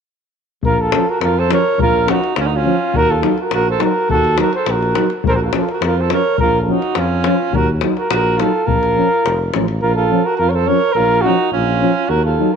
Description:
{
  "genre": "balkan folk, Balkan brass band",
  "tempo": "105 BPM",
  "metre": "2/4",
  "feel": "straight",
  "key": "Bb harmonic minor",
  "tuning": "A4 = 440 Hz",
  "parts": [
    { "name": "dark tuba", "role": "bass", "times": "0.6-12.4 s", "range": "F1 to F2", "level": "-20 LUFS", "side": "equal", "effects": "none" },
    { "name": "davul", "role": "percussion", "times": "0.6-9.8 s", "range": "none", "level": "-21 LUFS", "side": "left 7 dB", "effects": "none" },
    { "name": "mellow flugelhorn", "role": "melody", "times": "0.7-12.6 s", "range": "F4 to Db5", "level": "-18 LUFS", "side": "left 1 dB", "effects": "slapback echo" },
    { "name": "warm alto saxophone", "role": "second line", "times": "0.7-12.5 s", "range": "Db4 to Bb4", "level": "-20 LUFS", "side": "right 12 dB", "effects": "none" },
    { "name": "dark euphonium", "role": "accompaniment", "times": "0.9-12.5 s", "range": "F3 to Gb3", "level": "-24 LUFS", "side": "right 12 dB", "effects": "none" },
    { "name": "mellow euphonium", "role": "accompaniment", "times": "0.9-12.5 s", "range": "Db4 to Eb4", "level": "-23 LUFS", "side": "left 15 dB", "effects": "none" }
  ],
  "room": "light reverb, small room reverb",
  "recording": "1960s-style stereo with parts hard left and right",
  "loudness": "-13 LUFS",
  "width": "side -6 dB against mid",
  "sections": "0.6-9.8 A section; 9.8-12.6 A section",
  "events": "none",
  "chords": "0.6 Bbm; 2.9 Ebm; 5.2 Bbm; 7.5 Ebm; 8.7 Bbm"
}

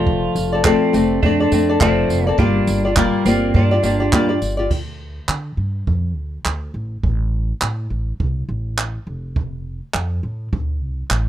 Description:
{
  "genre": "acoustic pop",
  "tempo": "103 BPM",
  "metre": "4/4",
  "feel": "swing 60% on 16ths",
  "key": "D minor",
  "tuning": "A4 = 441 Hz",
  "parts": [
    { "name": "twelve-string electric guitar", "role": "second line", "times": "0.0-4.4 s", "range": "Bb3 to F4", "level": "-22 LUFS", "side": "right 7 dB", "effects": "none" },
    { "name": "flamenco guitar", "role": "accompaniment", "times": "0.0-4.7 s", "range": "F3 to D5", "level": "-17 LUFS", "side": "left 3 dB", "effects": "none" },
    { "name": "upright bass", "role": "bass", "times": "0.0-11.3 s", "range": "F1 to D3", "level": "-22 LUFS", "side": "equal", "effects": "none" },
    { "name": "jazz brush drum kit", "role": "drums", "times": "0.1-11.3 s", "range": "crash cymbal, handclaps, kick drum, tambourine", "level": "-22 LUFS", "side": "right 2 dB", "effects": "none" }
  ],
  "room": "little or no reverb",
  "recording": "none",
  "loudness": "-16 LUFS",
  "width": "side -12 dB against mid",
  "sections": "0.0-4.7 A section; 4.7-11.3 B section",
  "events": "none",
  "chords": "0.0 F6; 2.4 Gm7; 4.7 Dm; 6.7 N.C.; 9.1 F6"
}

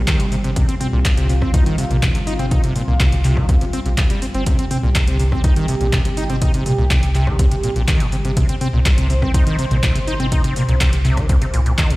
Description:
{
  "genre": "acid house",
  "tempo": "123 BPM",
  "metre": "4/4",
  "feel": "straight",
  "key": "C minor pentatonic",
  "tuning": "A4 = 442 Hz",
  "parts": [
    { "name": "dark analog pad", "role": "sustained chords", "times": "0.0-12.0 s", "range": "G3 to C5", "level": "-27 LUFS", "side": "right 1 dB", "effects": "chorus, sidechain pumping" },
    { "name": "acid bass, saw", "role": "riff", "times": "0.0-12.0 s", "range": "C2 to Eb4", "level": "-22 LUFS", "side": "equal", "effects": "overdrive, analog chorus, sidechain pumping, digital delay" },
    { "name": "round analog bass", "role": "bass", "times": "0.0-12.0 s", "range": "G1 to C2", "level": "-20 LUFS", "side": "equal", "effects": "sidechain pumping" },
    { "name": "booming analog drum machine", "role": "drums", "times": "0.1-12.0 s", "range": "handclaps, hi-hat, rim click, toms", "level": "-24 LUFS", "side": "equal", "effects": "overdrive" },
    { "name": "electronic kick drum", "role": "drums", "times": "0.1-11.9 s", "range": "none", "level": "-18 LUFS", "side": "equal", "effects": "none" }
  ],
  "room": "light reverb",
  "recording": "played on a big sound system in a bare room, stone room reverb",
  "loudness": "-15 LUFS",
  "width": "side -20 dB against mid",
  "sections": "0.0-12.0 A section",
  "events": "none",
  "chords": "0.0 C5"
}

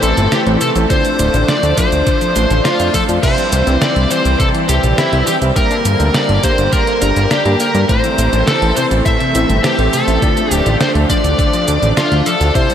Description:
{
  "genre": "synthwave",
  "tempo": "103 BPM",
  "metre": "4/4",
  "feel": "straight",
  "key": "D minor",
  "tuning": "A4 = 440 Hz",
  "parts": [
    { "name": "smooth overdriven lead guitar", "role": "melody", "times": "0.0-12.7 s", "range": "E4 to E5", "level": "-17 LUFS", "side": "left 1 dB", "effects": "analog delay" },
    { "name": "string machine, violins", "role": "second line", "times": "0.0-12.7 s", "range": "E5 to E6", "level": "-24 LUFS", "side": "right 1 dB", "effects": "ensemble chorus, analog delay" },
    { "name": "lush unison pad", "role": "sustained chords", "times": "0.0-12.7 s", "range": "D3 to D4", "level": "-19 LUFS", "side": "right 1 dB", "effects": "chorus, sidechain pumping" },
    { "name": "mellow FM electric piano", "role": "stabs", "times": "0.0-12.7 s", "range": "A3 to E5", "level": "-22 LUFS", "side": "left 3 dB", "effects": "chorus, phaser, analog delay" },
    { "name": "fat analog bass", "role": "bass", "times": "0.0-12.5 s", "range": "D1 to G2", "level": "-15 LUFS", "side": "equal", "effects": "tube saturation, sidechain pumping" },
    { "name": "detuned 8-bit digital drum machine", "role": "drums", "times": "0.0-12.7 s", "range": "cabasa, crash cymbal, hi-hat, snare drum", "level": "-22 LUFS", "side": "right 1 dB", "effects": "none" },
    { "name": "electric guitar at the edge of break-up", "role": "riff", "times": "0.2-12.7 s", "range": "A2 to D4", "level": "-25 LUFS", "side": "left 2 dB", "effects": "ensemble chorus, analog delay" },
    { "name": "electronic kick drum", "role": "drums", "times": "0.9-12.7 s", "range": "none", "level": "-17 LUFS", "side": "equal", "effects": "none" }
  ],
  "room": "wet huge ambient reverb, RT60 8.5 s",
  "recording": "dreamy mix soaked in reverb",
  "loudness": "-11 LUFS",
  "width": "side -9 dB against mid",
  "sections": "0.0-12.7 A section",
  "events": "none",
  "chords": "0.0 Am; 0.9 Dm; 3.2 C; 5.6 Gm; 7.9 Am; 10.2 Dm"
}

